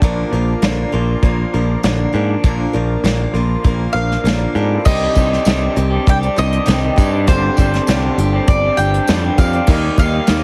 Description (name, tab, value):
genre	folk rock and heartland rock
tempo	99 BPM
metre	4/4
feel	straight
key	C minor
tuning	A4 = 440 Hz
part	picked steel-string acoustic guitar	accompaniment	0.0-10.4 s	G2 to Bb4	-25 LUFS	equal	plate reverb
part	tonewheel organ	sustained chords	0.0-10.4 s	A3 to Eb5	-33 LUFS	equal	none
part	electric guitar through a small old amp	riff	0.0-10.4 s	G2 to G4	-25 LUFS	equal	spring reverb
part	modern bright picked electric bass	bass	0.0-10.4 s	G1 to Ab2	-20 LUFS	equal	none
part	soft brush drum kit	drums	0.0-10.4 s	crash cymbal, hi-hat, kick drum, snare drum	-18 LUFS	equal	none
part	bowl-back mandolin	melody	3.9-10.4 s	C5 to G5	-23 LUFS	equal	plate reverb
part	tambourine	percussion	4.8-10.4 s	none	-38 LUFS	equal	none
part	clear baby grand piano	accompaniment	4.9-10.4 s	none	barely audible	none	none
room	light reverb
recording	heavily compressed radio sound, multiband compression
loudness	-15 LUFS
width	mono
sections	0.0-4.9 A section; 4.9-10.4 B section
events	none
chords	0.0 Bb; 4.9 Cmadd9; 7.3 Gsus4; 9.7 Eb